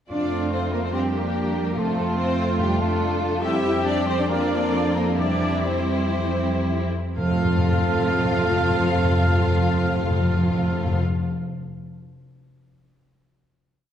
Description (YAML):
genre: cinematic, heroic adventure film score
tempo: 114-145 BPM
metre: 4/4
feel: straight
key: F major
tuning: A4 = 442 Hz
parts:
  - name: rich symphonic violin section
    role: melody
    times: 0.1-11.0 s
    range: E4 to G4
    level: -30 LUFS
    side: left 5 dB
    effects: none
  - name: mellow hollow large flute ensemble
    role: second line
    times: 0.1-11.0 s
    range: G5 to F6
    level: -32 LUFS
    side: equal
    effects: none
  - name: rich symphonic violin section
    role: second line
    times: 0.1-11.0 s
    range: G4 to F5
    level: -31 LUFS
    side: left 2 dB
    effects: none
  - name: rich symphonic viola section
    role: accompaniment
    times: 0.1-11.0 s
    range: G3 to F4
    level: -30 LUFS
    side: right 1 dB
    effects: none
  - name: warm French horn section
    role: sustained chords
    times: 0.1-11.0 s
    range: E3 to D4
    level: -31 LUFS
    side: equal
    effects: none
  - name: mellow trumpet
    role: stabs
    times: 0.1-11.0 s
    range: F4 to Bb4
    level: -30 LUFS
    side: right 2 dB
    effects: none
  - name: clear symphonic double bass section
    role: bass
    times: 0.1-11.0 s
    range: F2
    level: -27 LUFS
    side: right 1 dB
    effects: none
  - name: rich symphonic cello section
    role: bass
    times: 0.1-11.0 s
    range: F3 to E4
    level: -27 LUFS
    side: right 2 dB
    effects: none
  - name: timpani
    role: percussion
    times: 0.1-11.0 s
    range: F2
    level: -25 LUFS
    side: left 1 dB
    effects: none
room: wet scoring stage reverb, RT60 1.7 s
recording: heard from further back in the room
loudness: -20 LUFS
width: side -9 dB against mid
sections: 0.1-7.2 theme; 7.2-11.4 final chord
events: slowing down 2.6-7.2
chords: 0.1 F; 0.9 Gm/F; 1.8 F; 2.6 Dm/F; 3.4 C/F; 4.3 Bbadd9/F; 5.2 C/F; 7.2 F